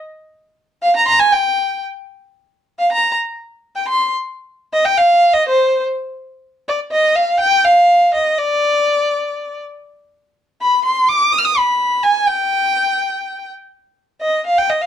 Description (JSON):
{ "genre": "klezmer", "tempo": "123 BPM", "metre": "2/4", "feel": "straight", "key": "C minor", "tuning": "A4 = 439 Hz", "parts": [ { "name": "warm violin", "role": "solo", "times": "0.8-14.9 s", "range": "C5 to F6", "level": "-13 LUFS", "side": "equal", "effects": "none" } ], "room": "moderate studio reverb, RT60 0.6 s", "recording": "dark, warm production", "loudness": "-13 LUFS", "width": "side -10 dB against mid", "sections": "0.0-6.0 A section; 6.0-13.7 B section; 13.7-14.9 C section", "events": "violin solo 6.0-13.7", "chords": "none" }